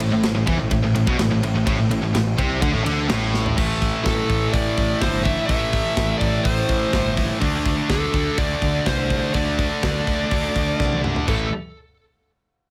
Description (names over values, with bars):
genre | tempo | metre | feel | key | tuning
heavy metal | 125 BPM | 4/4 | straight | A minor | A4 = 441 Hz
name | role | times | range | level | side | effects
warm brass ensemble | sustained chords | 0.0-3.5 s | A3 to C5 | -41 LUFS | equal | none
heavy high-gain guitar | riff | 0.0-11.5 s | A2 to D4 | -26 LUFS | equal | distortion
scooped high-gain guitar | riff | 0.0-11.5 s | A2 to D4 | -30 LUFS | equal | distortion
tight distorted guitar | riff | 0.0-3.6 s | A2 to E3 | -31 LUFS | equal | none
fuzz picked electric bass | bass | 0.0-11.5 s | G1 to E2 | -28 LUFS | equal | overdrive
tight metal drum kit | drums | 0.0-11.4 s | crash cymbal, hi-hat, kick drum, ride cymbal, snare drum, toms | -27 LUFS | equal | none
high-gain lead guitar | melody | 4.0-11.5 s | A4 to E5 | -28 LUFS | equal | distortion, digital delay
room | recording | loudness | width
light reverb | none | -21 LUFS | mono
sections
0.0-3.6 A section; 3.6-11.3 B section; 11.3-12.7 C section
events
drum fill 3.3, 10.8-11.3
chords
0.0 Am; 7.4 D5; 11.3 A5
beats
0.23 0.71 1.19 | 1.67 2.14 2.62 3.10 | 3.58 4.06 4.54 5.01 | 5.50 5.97 6.46 6.94 | 7.42 7.90 8.38 8.86 | 9.35 9.83 10.31 10.80 | 11.28